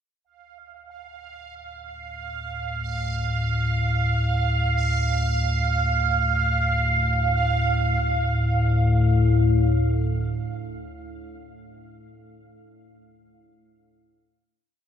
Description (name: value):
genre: dark ambient drone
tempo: free time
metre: none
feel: none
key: D minor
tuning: A4 = 441 Hz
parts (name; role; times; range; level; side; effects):
- deep rumbling drone; drone; 2.3-11.1 s; D2 to A2; -22 LUFS; left 1 dB; built-in reverb
- bubbling stepped-filter texture; texture; 0.2-8.0 s; F5; -26 LUFS; right 4 dB; chorus, built-in reverb
room: moderate huge ambient reverb, RT60 7.4 s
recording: none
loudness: -20 LUFS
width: side -8 dB against mid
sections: 0.3-8.0 A section; 8.0-11.9 final chord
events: fade-in on synth texture 0.3-8.0; filter sweep on synth drone 0.3-8.0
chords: 0.3 Dm